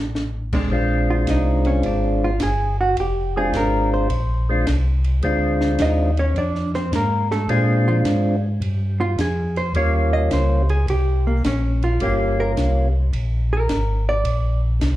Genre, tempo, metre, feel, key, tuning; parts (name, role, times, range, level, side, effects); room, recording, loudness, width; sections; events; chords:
soul jazz organ trio; 106 BPM; 4/4; swing 67% on 8ths; Bb mixolydian; A4 = 437 Hz
mellow tonewheel organ; bass; 0.0-15.0 s; F1 to Bb2; -20 LUFS; equal; slow rotary speaker
compact cocktail drum kit; drums; 0.2-15.0 s; crash cymbal, hi-hat, kick drum, ride cymbal, snare drum; -30 LUFS; equal
hollow-body jazz guitar; accompaniment; 0.5-14.6 s; F3 to Eb5; -24 LUFS; right 2 dB; plate reverb, slapback echo
percussive tonewheel organ; melody; 0.7-12.9 s; G3 to F4; -22 LUFS; equal; slow rotary speaker, plate reverb, slapback echo
light reverb; live gig heard through the venue's PA, club reverb; -18 LUFS; side -15 dB against mid
0.7-15.0 A section
drum fill 0.0; hollow-body jazz guitar solo 0.7-15.0
0.0 F (rootless); 0.7 Bb9; 9.8 Eb9; 14.3 Bbadd9